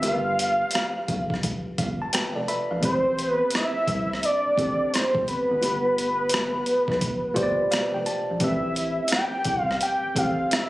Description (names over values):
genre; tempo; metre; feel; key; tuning
R&B, neo-soul; 86 BPM; 4/4; swing 64% on 16ths; A minor; A4 = 440 Hz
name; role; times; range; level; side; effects
fat analog lead; melody; 0.0-10.7 s; B4 to G5; -24 LUFS; equal; chorus, slapback echo
tine electric piano; accompaniment; 0.0-10.7 s; A3 to B5; -28 LUFS; equal; none
rubbery square bass; bass; 0.0-10.5 s; F1 to C2; -34 LUFS; equal; none
boom bap sampler-style drum kit; drums; 0.0-10.7 s; hi-hat, kick drum, rim click; -28 LUFS; equal; overdrive
room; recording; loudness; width
light reverb; recorded on a phone in the room, club reverb; -22 LUFS; side -18 dB against mid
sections
0.0-10.7 A section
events
tine electric piano fill 1.4-2.8, 7.0-8.4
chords
0.0 G9; 2.8 Am7; 5.6 G9; 8.4 Am9